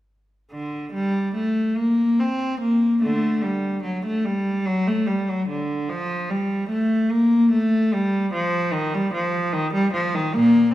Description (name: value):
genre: classical, baroque-style suite movement for unaccompanied cello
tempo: 74 BPM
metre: 3/4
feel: rubato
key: G minor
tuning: A4 = 440 Hz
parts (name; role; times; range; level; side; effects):
- rich cello; solo; 0.5-10.7 s; Bb2 to C4; -19 LUFS; equal; none
room: wet recital hall reverb, RT60 1.7 s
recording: minimal, uncompressed stereo recording, faint mains hum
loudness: -19 LUFS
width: side -14 dB against mid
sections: 0.5-10.7 A section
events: none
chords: none